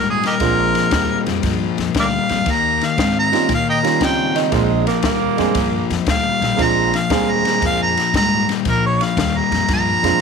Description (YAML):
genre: electric blues shuffle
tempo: 116 BPM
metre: 4/4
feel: swing 68% on 8ths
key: Bb mixolydian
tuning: A4 = 440 Hz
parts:
  - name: warm harmonica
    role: melody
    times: 0.0-10.2 s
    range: Eb4 to Bb5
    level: -19 LUFS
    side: right 2 dB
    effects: overdrive
  - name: overdriven semi-hollow guitar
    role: riff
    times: 0.0-10.2 s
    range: Bb2 to C4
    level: -21 LUFS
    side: left 12 dB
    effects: none
  - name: upright bass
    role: bass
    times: 0.0-10.1 s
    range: Bb1 to Db3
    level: -24 LUFS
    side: right 1 dB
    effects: none
  - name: compact cocktail drum kit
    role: drums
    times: 0.2-10.1 s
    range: kick drum, ride cymbal, snare drum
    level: -24 LUFS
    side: left 3 dB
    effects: none
  - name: warm upright piano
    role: accompaniment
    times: 0.4-10.2 s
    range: G3 to Ab4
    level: -21 LUFS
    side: right 15 dB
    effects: none
  - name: mellow tenor saxophone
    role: second line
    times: 4.4-6.0 s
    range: Eb3 to Bb3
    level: -20 LUFS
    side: right 12 dB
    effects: none
room: light reverb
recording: 1960s-style stereo with parts hard left and right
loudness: -15 LUFS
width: side -5 dB against mid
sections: 0.0-10.2 A section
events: none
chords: 0.0 Bb9; 2.5 Eb9; 4.5 Bb9